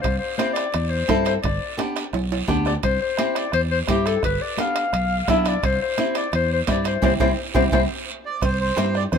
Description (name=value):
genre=latin, cumbia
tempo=172 BPM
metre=4/4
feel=straight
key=C major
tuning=A4 = 442 Hz
part: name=warm clarinet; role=second line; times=0.0-7.8 s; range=G4 to F5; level=-24 LUFS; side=left 5 dB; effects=none
part: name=fingered electric bass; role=bass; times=0.0-9.2 s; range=G1 to G2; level=-24 LUFS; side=equal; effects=none
part: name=bombo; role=percussion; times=0.0-9.2 s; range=none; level=-26 LUFS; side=right 2 dB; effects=none
part: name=congas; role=percussion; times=0.0-9.2 s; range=none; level=-31 LUFS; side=equal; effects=none
part: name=guiro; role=percussion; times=0.0-9.2 s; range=none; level=-35 LUFS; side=right 7 dB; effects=none
part: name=timbales and cowbell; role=percussion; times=0.0-9.2 s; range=none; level=-30 LUFS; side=right 8 dB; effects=none
part: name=flamenco guitar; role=accompaniment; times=0.4-9.0 s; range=B3 to A4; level=-26 LUFS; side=equal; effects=none
part: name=accordion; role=melody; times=8.3-9.2 s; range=C5 to D5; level=-24 LUFS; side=right 4 dB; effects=none
room=light reverb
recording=minimal, uncompressed stereo recording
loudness=-19 LUFS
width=side -7 dB against mid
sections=0.0-8.4 A section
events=clarinet solo 0.0-8.4; drum fill 2.1-2.8, 7.0-8.4; band accent 7.0-8.4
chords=0.0 C; 1.4 G; 2.8 C; 4.2 G7; 5.6 C